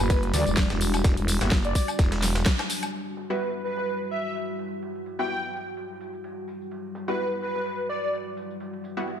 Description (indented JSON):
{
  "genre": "bass house",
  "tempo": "127 BPM",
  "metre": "4/4",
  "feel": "swing 55% on 16ths",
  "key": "E minor",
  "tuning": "A4 = 440 Hz",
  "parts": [
    { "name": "airy dreamy lead", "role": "melody", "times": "0.0-8.1 s", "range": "B4 to G5", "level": "-31 LUFS", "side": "equal", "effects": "chorus, cassette tape, dub echo" },
    { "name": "deep dark ambient pad", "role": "sustained chords", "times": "0.0-9.2 s", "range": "G3 to F#4", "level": "-34 LUFS", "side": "left 1 dB", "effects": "chorus, built-in reverb, sidechain pumping" },
    { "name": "growling FM bass", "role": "bass", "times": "0.0-2.4 s", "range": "E1 to D2", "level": "-25 LUFS", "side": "equal", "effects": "overdrive, sidechain pumping" },
    { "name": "big-room dance drum kit", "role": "drums", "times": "0.0-9.2 s", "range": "hi-hat, snare drum, tambourine, woodblock", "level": "-29 LUFS", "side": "left 1 dB", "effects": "low-pass filter on hats, low-pass filter on perc, low-pass filter on snare, low-pass filter on room" },
    { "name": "breakbeat sampler-style drum kit", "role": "drums", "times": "0.1-9.2 s", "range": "hi-hat, ride cymbal, snare drum", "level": "-39 LUFS", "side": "right 1 dB", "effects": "sidechain pumping on cymbals, high-pass filter on cymbals, low-pass filter on cymbals, high-pass filter on snare, low-pass filter on snare, sidechain pumping on hats, high-pass filter on hats, low-pass filter on hats, high-pass filter on room, low-pass filter on room" },
    { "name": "electronic kick drum", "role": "drums", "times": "0.1-2.6 s", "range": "none", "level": "-22 LUFS", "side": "equal", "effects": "none" },
    { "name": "orchestra-hit-like synth stab", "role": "stabs", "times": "1.4-9.1 s", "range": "G3 to F#4", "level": "-33 LUFS", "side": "left 1 dB", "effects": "built-in reverb, sidechain pumping, dub echo" }
  ],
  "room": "light reverb, digital ambience",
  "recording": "none",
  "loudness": "-24 LUFS",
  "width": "side -9 dB against mid",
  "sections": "0.0-2.9 A section; 2.9-9.2 B section",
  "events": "filter sweep on FM bass 0.0-2.9; band accent 2.5; filter sweep on drum 2.9-9.2",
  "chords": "0.0 Emadd9",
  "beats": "0.10 0.57 | 1.04 1.52 1.99 2.46 | 2.93 3.41 3.88 4.35 | 4.82 5.30 5.77 6.24 | 6.71 7.19 7.66 8.13 | 8.60 9.08"
}